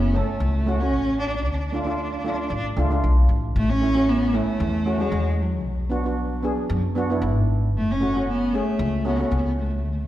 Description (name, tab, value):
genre	calypso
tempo	114 BPM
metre	4/4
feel	straight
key	unclear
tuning	A4 = 435 Hz
part	dark cello	melody	0.0-10.1 s	F#3 to D4	-25 LUFS	equal	none
part	upright bass	bass	0.0-10.1 s	F#1 to F#2	-23 LUFS	equal	none
part	steel pan	accompaniment	0.1-9.8 s	G#3 to A4	-27 LUFS	right 1 dB	none
room	moderate concert hall reverb, RT60 1.9 s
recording	recorded in a church or concert hall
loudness	-20 LUFS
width	side -13 dB against mid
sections	0.0-10.1 A section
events	none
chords	0.0 F#m; 1.5 Dm; 3.6 Amaj7; 5.7 Bm; 7.8 F#m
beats	0.41 0.94 | 1.46 1.98 2.51 3.03 | 3.56 4.08 4.61 5.13 | 5.66 6.18 6.70 7.23 | 7.75 8.28 8.80 9.33 | 9.85